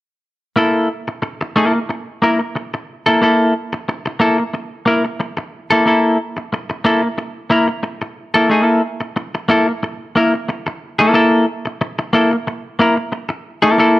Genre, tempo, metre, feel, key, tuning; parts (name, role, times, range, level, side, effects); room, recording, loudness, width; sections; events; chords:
funk; 91 BPM; 4/4; straight; A4 = 440 Hz
semi-hollow electric guitar; accompaniment; 0.6-14.0 s; Bb3 to Bb4; -14 LUFS; left 1 dB
moderate large studio reverb, RT60 1.4 s; -15 LUFS; side -17 dB against mid
0.6-11.1 A section; 11.1-14.0 B section
0.6 A5